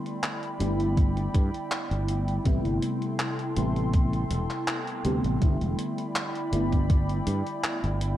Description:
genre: vaporwave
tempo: 81 BPM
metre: 4/4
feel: swing 53% on 16ths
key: unclear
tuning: A4 = 441 Hz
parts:
  - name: mellow FM electric piano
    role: accompaniment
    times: 0.0-8.2 s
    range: C3 to G4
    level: -30 LUFS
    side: left 1 dB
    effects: ensemble chorus, tape echo
  - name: warbly tape-like pad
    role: sustained chords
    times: 0.0-8.2 s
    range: E4 to C6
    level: -34 LUFS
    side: right 1 dB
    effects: chorus, built-in reverb
  - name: gated 80s digital drum machine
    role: drums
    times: 0.1-8.2 s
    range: handclaps, hi-hat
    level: -33 LUFS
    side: equal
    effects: gated reverb
  - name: sustaining fretless electric bass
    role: bass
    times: 0.6-8.2 s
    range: E1 to G2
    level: -28 LUFS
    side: equal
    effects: none
  - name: electronic kick drum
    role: drums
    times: 1.0-7.1 s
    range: none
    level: -23 LUFS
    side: equal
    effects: none
room: light reverb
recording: dark, warm production, cassette tape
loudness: -24 LUFS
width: side -13 dB against mid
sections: 0.0-5.4 A section; 5.4-8.2 B section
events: band accent 4.7-5.0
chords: 0.0 G6; 2.5 Am7; 5.4 G6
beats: 0.23 0.97 1.72 | 2.46 3.20 3.94 4.68 | 5.42 6.16 6.90 7.64

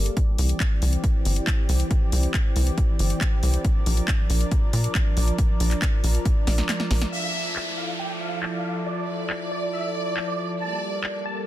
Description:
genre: uplifting trance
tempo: 138 BPM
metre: 4/4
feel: straight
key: D minor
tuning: A4 = 439 Hz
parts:
  - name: lush unison pad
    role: sustained chords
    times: 0.0-11.4 s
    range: E3 to D5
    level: -30 LUFS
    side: equal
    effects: chorus, sidechain pumping
  - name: tight sequencer bass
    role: bass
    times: 0.0-7.1 s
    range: G1 to Bb2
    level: -21 LUFS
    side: equal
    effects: sidechain pumping
  - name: house drum kit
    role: drums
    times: 0.1-11.1 s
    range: handclaps, hi-hat, snare drum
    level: -30 LUFS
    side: left 1 dB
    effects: low-pass filter on hats, low-pass filter on snare
  - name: electronic kick drum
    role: drums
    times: 0.2-6.3 s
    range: none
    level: -23 LUFS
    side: equal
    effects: none
  - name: big supersaw lead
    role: melody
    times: 7.1-11.4 s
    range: D5 to A5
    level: -33 LUFS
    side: right 2 dB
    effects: phaser, sidechain pumping, low-pass filter, ping-pong delay
  - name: warm studio violin section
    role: second line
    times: 7.1-11.2 s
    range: D5 to E5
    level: -31 LUFS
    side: equal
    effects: tape echo
  - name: downlifter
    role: sound effects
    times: 7.1-10.6 s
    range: none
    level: -34 LUFS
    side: equal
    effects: none
room: digital ambience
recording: dense, heavily limited modern master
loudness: -21 LUFS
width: side -14 dB against mid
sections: 0.0-7.1 A section; 7.1-11.5 B section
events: filter sweep on analog synth pad 0.0-7.1; drum fill 6.5-7.1; kick drops out 6.7-7.1; filter sweep on drum 7.1-11.5; filter sweep on supersaw synth 7.1-11.5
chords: 0.2 Cadd9; 3.6 Bb; 7.1 Dmadd9; 10.6 Gmadd9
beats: | 0.17 0.60 1.04 1.47 | 1.91 2.34 2.78 3.21 | 3.65 4.08 4.52 4.95 | 5.38 5.82 6.25 6.69 | 7.12 7.56 7.99 8.43 | 8.86 9.30 9.73 10.17 | 10.60 11.04

